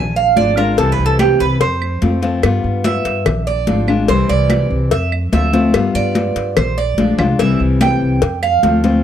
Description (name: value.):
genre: latin, Cuban son and guajira.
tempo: 145 BPM.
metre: 4/4.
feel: straight.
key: C major.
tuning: A4 = 440 Hz.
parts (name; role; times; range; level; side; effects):
Cuban tres; arpeggios; 0.0-9.0 s; G4 to Ab5; -18 LUFS; right 6 dB; none.
upright bass; bass; 0.0-9.0 s; Ab1 to G2; -18 LUFS; equal; none.
congas; percussion; 0.2-9.0 s; none; -20 LUFS; left 2 dB; none.
nylon-string guitar; accompaniment; 0.4-9.0 s; C3 to F4; -18 LUFS; left 4 dB; none.
claves; percussion; 0.6-8.6 s; none; -28 LUFS; right 8 dB; none.
cowbell; percussion; 0.8-9.0 s; none; -20 LUFS; left 8 dB; none.
room: small room ambience.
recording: dry, close 1970s-style studio recording.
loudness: -13 LUFS.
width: side -9 dB against mid.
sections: 0.0-9.0 A section.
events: Cuban tres solo 0.0-9.0; drum fill 7.0-7.4.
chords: 0.0 Bb7; 0.8 C; 1.6 F; 2.4 G7; 3.3 Bb7; 4.1 C; 4.9 F; 5.7 G7; 6.6 Bb7; 7.4 C; 8.2 F.